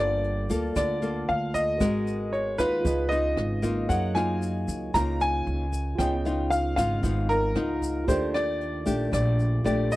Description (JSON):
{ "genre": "bossa nova", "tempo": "115 BPM", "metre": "4/4", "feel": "straight", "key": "unclear", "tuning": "A4 = 439 Hz", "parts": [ { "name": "clear concert grand piano", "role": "melody", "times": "0.0-10.0 s", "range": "Bb4 to Bb5", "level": "-28 LUFS", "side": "equal", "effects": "none" }, { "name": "nylon-string guitar", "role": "accompaniment", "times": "0.0-10.0 s", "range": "Ab2 to Bb4", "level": "-29 LUFS", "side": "left 1 dB", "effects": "none" }, { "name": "tine electric piano", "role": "accompaniment", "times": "0.0-10.0 s", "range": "Cb4 to Eb5", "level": "-36 LUFS", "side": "right 5 dB", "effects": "overdrive" }, { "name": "upright bass", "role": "bass", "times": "0.0-10.0 s", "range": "G1 to Gb2", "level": "-29 LUFS", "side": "equal", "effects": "none" }, { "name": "jazz brush drum kit", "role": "drums", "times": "0.2-10.0 s", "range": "hi-hat, kick drum, rim click", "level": "-32 LUFS", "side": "equal", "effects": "none" }, { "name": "tube shaker", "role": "percussion", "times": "0.5-10.0 s", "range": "none", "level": "-44 LUFS", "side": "left 5 dB", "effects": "none" } ], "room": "little or no reverb", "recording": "dry, close 1970s-style studio recording", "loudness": "-24 LUFS", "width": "side -17 dB against mid", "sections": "0.0-10.0 A section", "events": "none", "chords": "0.0 Gm9; 1.8 Abm9; 2.9 Db9; 3.9 Gbmaj13; 6.0 Db9; 8.1 Ebmaj9#11" }